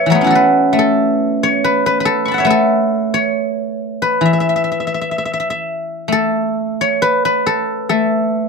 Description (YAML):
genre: chinese traditional, Chinese solo plucked strings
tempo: 62-71 BPM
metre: 4/4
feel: rubato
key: E zhi mode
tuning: A4 = 442 Hz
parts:
  - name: guzheng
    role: solo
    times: 0.0-8.5 s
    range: E3 to C#6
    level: -13 LUFS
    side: equal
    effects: none
room: moderate small room reverb, RT60 0.6 s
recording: dark, warm production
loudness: -13 LUFS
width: side -4 dB against mid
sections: 0.0-6.1 A section; 6.1-8.5 B section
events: none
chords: none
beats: 0.76 1.61 | 2.47 3.34 4.22 5.15 | 6.11 7.02 7.92